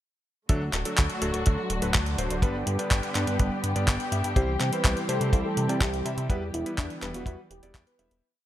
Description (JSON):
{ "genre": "italo disco", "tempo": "124 BPM", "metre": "4/4", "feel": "straight", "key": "E minor", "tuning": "A4 = 439 Hz", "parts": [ { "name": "muted studio string section", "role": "sustained chords", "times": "0.5-8.2 s", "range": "D3 to G4", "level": "-31 LUFS", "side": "equal", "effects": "none" }, { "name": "warm electric grand piano", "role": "stabs", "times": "0.5-8.2 s", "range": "F#3 to E5", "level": "-34 LUFS", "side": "left 1 dB", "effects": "none" }, { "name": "chorused synth bass", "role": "bass", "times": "0.5-8.2 s", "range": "D1 to C3", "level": "-30 LUFS", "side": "equal", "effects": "none" }, { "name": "clean 12-bit digital drum machine", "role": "drums", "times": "0.5-8.2 s", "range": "handclaps, hi-hat", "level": "-30 LUFS", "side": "equal", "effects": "none" }, { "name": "kick drum", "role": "drums", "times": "0.5-7.8 s", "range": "none", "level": "-24 LUFS", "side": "equal", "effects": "none" }, { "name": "wide unison lead", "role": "melody", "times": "4.4-8.1 s", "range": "D4 to B4", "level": "-33 LUFS", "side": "equal", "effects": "digital delay" } ], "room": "light reverb, studio reverb", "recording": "none", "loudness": "-24 LUFS", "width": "side -13 dB against mid", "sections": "0.5-8.2 verse", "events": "fade-out 5.7-8.2", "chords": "0.5 D; 2.4 G; 4.4 C; 6.3 Em", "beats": "| 0.49 0.97 1.46 1.94 | 2.43 2.91 3.40 3.88 | 4.36 4.85 5.33 5.81 | 6.30 6.78 7.27 7.75" }